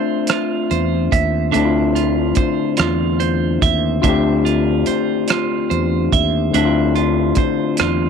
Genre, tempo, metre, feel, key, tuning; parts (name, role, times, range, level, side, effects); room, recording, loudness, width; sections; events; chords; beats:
slow six-eight R&B; 48 BPM (dotted quarters); 6/8; straight; A4 = 440 Hz
clean electric guitar; second line; 0.0-8.1 s; D4 to E5; -20 LUFS; right 13 dB
overdriven tine electric piano; accompaniment; 0.0-8.1 s; D3 to E5; -19 LUFS; left 9 dB
cloth-damped thuddy drum kit; drums; 0.3-8.0 s; hi-hat, kick drum, rim click; -20 LUFS; right 3 dB
mellow fretless electric bass; bass; 0.7-8.1 s; D2 to E2; -20 LUFS; right 1 dB
light reverb; 1960s-style stereo with parts hard left and right; -15 LUFS; side -6 dB against mid
0.0-8.1 A section
0.0 Dm9
0.29 | 1.54 2.79 | 4.04 5.29 | 6.54 7.79